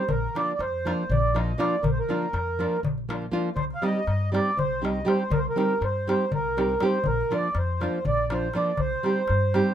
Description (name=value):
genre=balkan folk, Balkan wedding band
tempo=242 BPM (eighths)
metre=7/8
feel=straight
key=C minor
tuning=A4 = 439 Hz
part: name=mellow accordion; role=melody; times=0.0-9.7 s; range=Bb4 to F5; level=-26 LUFS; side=right 2 dB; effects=none
part: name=nylon-string guitar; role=accompaniment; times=0.0-9.7 s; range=F3 to G4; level=-26 LUFS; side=right 2 dB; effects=none
part: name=upright bass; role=bass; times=0.1-9.6 s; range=Bb1 to G2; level=-28 LUFS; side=left 1 dB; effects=none
part: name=darbuka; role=percussion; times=0.1-9.7 s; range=none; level=-30 LUFS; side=left 3 dB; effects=none
room=light reverb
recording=minimal, uncompressed stereo recording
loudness=-23 LUFS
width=side -10 dB against mid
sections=0.0-9.7 A section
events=none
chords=0.1 Bb; 3.6 Cm; 7.0 Bb; 8.8 Cm